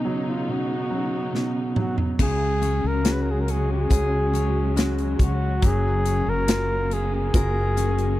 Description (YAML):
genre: pop ballad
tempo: 70 BPM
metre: 4/4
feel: straight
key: unclear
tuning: A4 = 439 Hz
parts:
  - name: mellow flugelhorn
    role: melody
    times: 0.0-8.2 s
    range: D#4 to B4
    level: -27 LUFS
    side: equal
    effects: none
  - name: clear baby grand piano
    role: accompaniment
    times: 0.0-8.2 s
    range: B2 to A#4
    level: -30 LUFS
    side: right 3 dB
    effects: none
  - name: warm studio string section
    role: sustained chords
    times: 0.0-8.2 s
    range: C#3 to D#4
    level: -30 LUFS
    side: left 1 dB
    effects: none
  - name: modern studio drum kit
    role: drums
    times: 1.3-8.2 s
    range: crash cymbal, hi-hat, kick drum, snare drum, toms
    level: -22 LUFS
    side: equal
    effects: none
  - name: picked steel-string acoustic guitar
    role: arpeggios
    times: 2.2-8.2 s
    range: F#2 to A#4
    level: -31 LUFS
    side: left 9 dB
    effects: none
  - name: mellow fretless electric bass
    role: bass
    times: 2.2-8.2 s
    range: F#1 to C#2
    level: -24 LUFS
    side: equal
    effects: none
room: little or no reverb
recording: dry, close 1970s-style studio recording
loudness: -20 LUFS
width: side -15 dB against mid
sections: 0.0-2.2 A section; 2.2-8.2 B section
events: drum fill 1.3-2.2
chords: 0.0 Badd9; 2.2 C#sus4; 5.6 F#maj7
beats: 0.48 1.34 | 2.20 3.05 3.91 4.77 | 5.62 6.48 7.34 8.20